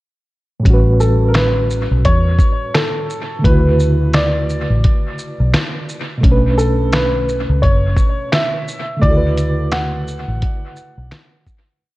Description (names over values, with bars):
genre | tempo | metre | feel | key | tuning
lo-fi hip hop | 86 BPM | 4/4 | swing 59% on 16ths | D major | A4 = 441 Hz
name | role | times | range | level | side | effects
reed electric piano | accompaniment | 0.6-11.8 s | A2 to B4 | -20 LUFS | right 1 dB | overdrive, fast tremolo, cassette tape, dub echo
vintage muted fingered electric bass | bass | 0.7-11.1 s | F#1 to E2 | -16 LUFS | equal | none
lo-fi sampler-style drum kit | drums | 0.7-11.7 s | finger snaps, hi-hat, kick drum, shaker, snare drum | -16 LUFS | equal | dub echo
warm upright piano | melody | 1.0-11.1 s | A4 to F#5 | -21 LUFS | equal | dub echo
room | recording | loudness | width
little or no reverb | echo-heavy mix, cassette tape | -13 LUFS | side -18 dB against mid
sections
0.7-11.8 A section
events
fade-out 9.0-11.8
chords
0.7 A13; 3.4 Dmaj13; 6.2 Bm9; 9.0 Dmaj13